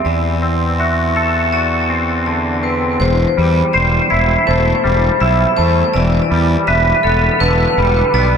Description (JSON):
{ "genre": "post-rock", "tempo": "82 BPM", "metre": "4/4", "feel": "straight", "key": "unclear", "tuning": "A4 = 440 Hz", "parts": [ { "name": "twangy electric guitar", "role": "arpeggios", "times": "0.0-8.4 s", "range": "E2 to C5", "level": "-16 LUFS", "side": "left 1 dB", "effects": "analog chorus, ping-pong delay" }, { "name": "vibraphone with hard mallets", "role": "arpeggios", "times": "0.0-8.4 s", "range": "A4 to E5", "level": "-18 LUFS", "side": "equal", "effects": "ping-pong delay" }, { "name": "fuzz fingered electric bass", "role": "bass", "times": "0.1-8.4 s", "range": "E1 to E2", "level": "-16 LUFS", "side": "equal", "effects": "overdrive" } ], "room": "moderate lush hall reverb, RT60 2.8 s", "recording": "dreamy mix soaked in reverb", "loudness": "-12 LUFS", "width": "side -7 dB against mid", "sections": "0.0-3.0 A section; 3.0-8.4 B section", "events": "build-up 3.0-8.4", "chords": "0.1 D7/E; 3.0 Am7/E; 5.9 Em7", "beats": "| 0.05 0.79 1.53 2.27 | 3.00 3.74 4.48 5.21 | 5.95 6.68 7.42 8.15" }